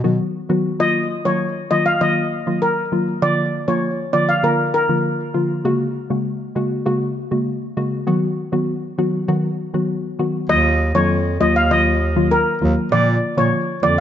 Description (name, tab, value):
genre	dancehall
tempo	99 BPM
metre	4/4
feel	straight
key	Eb minor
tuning	A4 = 440 Hz
part	soft round pluck	accompaniment	0.0-14.0 s	Db3 to F#4	-19 LUFS	left 1 dB	chorus
part	mellow bass clarinet	bass	0.0-0.2, 10.5-14.0 s	Eb2 to B2	-20 LUFS	right 1 dB	none
part	steel pan	melody	0.8-4.9, 10.5-14.0 s	Bb4 to F5	-18 LUFS	equal	ping-pong delay
room	light reverb, studio reverb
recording	nothing above 7.8 kHz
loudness	-16 LUFS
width	side -10 dB against mid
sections	0.8-10.5 A section; 10.5-14.0 B section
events	none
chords	0.0 B; 0.8 Ebmadd9; 3.2 Bb; 5.6 Gbadd9; 8.1 B; 10.5 Ebmadd9; 12.9 Bb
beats	0.19 | 0.80 1.40 2.01 2.62 | 3.22 3.83 4.43 5.04 | 5.65 6.25 6.86 7.46 | 8.07 8.68 9.28 9.89 | 10.49 11.10 11.71 12.31 | 12.92 13.53